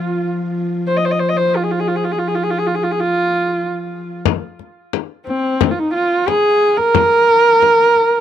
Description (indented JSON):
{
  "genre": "mongolian traditional, Mongolian folk",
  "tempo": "89 BPM",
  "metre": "4/4",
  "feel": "straight",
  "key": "F yu mode",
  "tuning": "A4 = 440 Hz",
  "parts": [
    { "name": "warm horsehead fiddle", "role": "melody", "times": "0.0-8.2 s", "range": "C4 to Eb5", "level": "-14 LUFS", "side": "right 1 dB", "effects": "none" },
    { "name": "dark horsehead fiddle", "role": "drone", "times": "0.0-4.3 s", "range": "F3", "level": "-22 LUFS", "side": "left 1 dB", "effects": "stereo widening" },
    { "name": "frame drum", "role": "percussion", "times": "4.3-8.0 s", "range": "none", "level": "-18 LUFS", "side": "left 11 dB", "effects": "none" }
  ],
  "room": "light reverb",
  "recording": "dry, close 1970s-style studio recording",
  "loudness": "-14 LUFS",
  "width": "side -10 dB against mid",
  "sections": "0.0-4.3 A section; 4.3-8.2 B section",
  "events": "none",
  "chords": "none",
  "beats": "0.20 0.88 | 1.55 2.23 2.90 3.58 | 4.25 4.92 5.60 6.27 | 6.94 7.62"
}